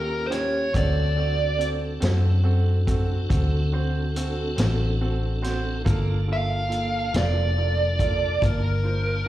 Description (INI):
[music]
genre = slow blues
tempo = 47 BPM (dotted quarters)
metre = 12/8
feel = straight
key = G minor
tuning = A4 = 439 Hz
[part]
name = dark smooth lead guitar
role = melody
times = 0.0-9.3 s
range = Bb4 to F5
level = -25 LUFS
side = right 2 dB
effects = overdrive, plate reverb, slapback echo
[part]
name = clear baby grand piano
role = accompaniment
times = 0.0-9.3 s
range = Bb3 to A5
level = -32 LUFS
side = right 3 dB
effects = plate reverb, slapback echo
[part]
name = tonewheel organ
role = sustained chords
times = 0.0-9.3 s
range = Bb3 to A5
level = -34 LUFS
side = equal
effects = overdrive, chorus vibrato, slow rotary speaker, plate reverb
[part]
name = vintage muted fingered electric bass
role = bass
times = 0.0-9.3 s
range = F1 to F#2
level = -23 LUFS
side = equal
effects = none
[part]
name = vintage drum kit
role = drums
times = 0.3-8.6 s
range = hi-hat, kick drum, snare drum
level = -27 LUFS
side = equal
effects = none
[sound]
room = light reverb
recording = live gig heard through the venue's PA, recital hall reverb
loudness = -21 LUFS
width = side -14 dB against mid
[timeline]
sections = 0.0-9.3 A section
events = none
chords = 0.0 Eb7; 0.7 D7; 5.9 Gm7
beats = | 0.75 2.02 3.30 4.58 | 5.86 7.14 8.43